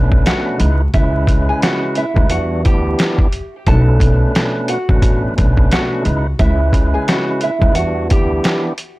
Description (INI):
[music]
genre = hip hop, boom-bap hip-hop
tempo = 88 BPM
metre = 4/4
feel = swing 59% on 16ths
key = B minor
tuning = A4 = 440 Hz
[part]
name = tonewheel organ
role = accompaniment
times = 0.0-8.7 s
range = B2 to B4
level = -20 LUFS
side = equal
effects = overdrive, fast rotary speaker, cassette tape, high-pass filter, low-pass filter
[part]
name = upright bass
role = bass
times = 0.0-8.4 s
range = A1 to E2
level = -16 LUFS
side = equal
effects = none
[part]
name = trip hop sampler-style drum kit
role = drums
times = 0.1-9.0 s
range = hi-hat, kick drum, snare drum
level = -15 LUFS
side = equal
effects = none
[part]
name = nylon-string guitar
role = melody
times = 0.3-8.6 s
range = E4 to A5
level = -21 LUFS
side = right 1 dB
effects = high-pass filter, low-pass filter, tape echo
[sound]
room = little or no reverb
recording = dry, gritty hardware recording, transformer saturation, vinyl crackle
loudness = -12 LUFS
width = side -19 dB against mid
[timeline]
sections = 0.0-9.0 A section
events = none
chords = 0.0 Bm9; 0.6 C#m9; 2.3 Em9; 3.7 Bm9; 6.1 C#m9; 7.8 Em9